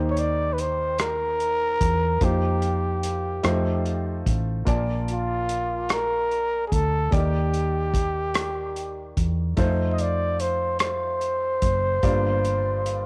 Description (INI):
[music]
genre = slow gospel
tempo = 49 BPM (dotted quarters)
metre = 6/8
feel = straight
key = unclear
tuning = A4 = 441 Hz
[part]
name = warm concert grand piano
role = accompaniment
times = 0.0-13.1 s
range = G2 to A5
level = -33 LUFS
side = equal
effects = none
[part]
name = hollow-body short-scale fingered electric bass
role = bass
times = 0.0-13.1 s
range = Gb1 to F2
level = -29 LUFS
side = equal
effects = none
[part]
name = growling trumpet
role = melody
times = 0.1-13.1 s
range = F4 to Eb5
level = -27 LUFS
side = equal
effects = none
[part]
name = warm soul drum kit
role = drums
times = 0.2-13.0 s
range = hi-hat, kick drum, rim click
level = -28 LUFS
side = equal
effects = cassette tape
[sound]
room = light reverb, small room ambience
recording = home recording on cassette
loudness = -24 LUFS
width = mono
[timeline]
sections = 0.0-13.1 A section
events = none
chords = 0.0 Eb6; 2.2 F7sus4; 3.4 F7; 4.7 Bbmaj7; 7.1 Ebmaj7; 9.6 F7; 12.0 Gm7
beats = 0.98 | 2.21 3.44 | 4.67 5.90 | 7.12 8.35 | 9.58 10.81 | 12.03